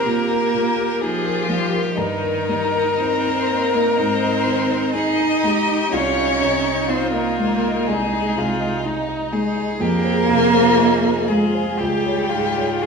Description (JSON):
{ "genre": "classical, slow romantic movement for piano quintet", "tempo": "62 BPM", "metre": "4/4", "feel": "rubato", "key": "Ab major", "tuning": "A4 = 443 Hz", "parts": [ { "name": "warm violin", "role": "melody", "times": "0.0-12.9 s", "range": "Eb4 to Eb5", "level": "-24 LUFS", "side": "left 9 dB", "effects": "none" }, { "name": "warm cello", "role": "second line", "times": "0.0-12.9 s", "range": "Eb3 to Eb4", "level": "-21 LUFS", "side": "right 6 dB", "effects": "none" }, { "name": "warm violin", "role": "second line", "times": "0.0-12.9 s", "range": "Eb4 to Bb4", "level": "-24 LUFS", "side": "left 4 dB", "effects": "none" }, { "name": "rich viola", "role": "accompaniment", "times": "0.0-12.9 s", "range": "Eb4 to Ab4", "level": "-28 LUFS", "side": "right 3 dB", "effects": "none" }, { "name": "warm grand piano", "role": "accompaniment", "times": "0.0-12.9 s", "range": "C2 to Eb5", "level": "-23 LUFS", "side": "left 1 dB", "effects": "none" } ], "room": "wet recital hall reverb, RT60 1.4 s", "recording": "small room ambience", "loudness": "-17 LUFS", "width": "side -5 dB against mid", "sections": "0.0-12.9 A section", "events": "none", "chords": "0.0 Eb; 2.0 Eb/G; 4.0 Ab; 5.9 Ab/C; 9.8 Fm; 11.8 Db" }